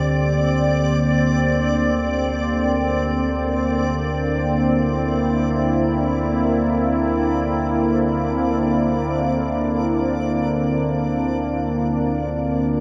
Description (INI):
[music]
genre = dark ambient drone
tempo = free time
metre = none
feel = none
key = unclear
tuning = A4 = 441 Hz
[part]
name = deep dark ambient pad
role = sustained chords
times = 0.0-12.8 s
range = D3 to G4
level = -22 LUFS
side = equal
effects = chorus, built-in reverb
[part]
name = deep rumbling drone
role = drone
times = 0.0-12.8 s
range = D2 to D3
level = -27 LUFS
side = equal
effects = built-in reverb
[part]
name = backwards swelling texture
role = texture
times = 0.0-12.8 s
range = D5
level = -30 LUFS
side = equal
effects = built-in reverb
[sound]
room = wet huge ambient reverb, RT60 8.9 s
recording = none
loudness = -20 LUFS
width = mono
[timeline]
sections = 0.0-12.8 A section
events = filter sweep on synth drone 0.0-12.8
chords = 0.0 Bbadd9/D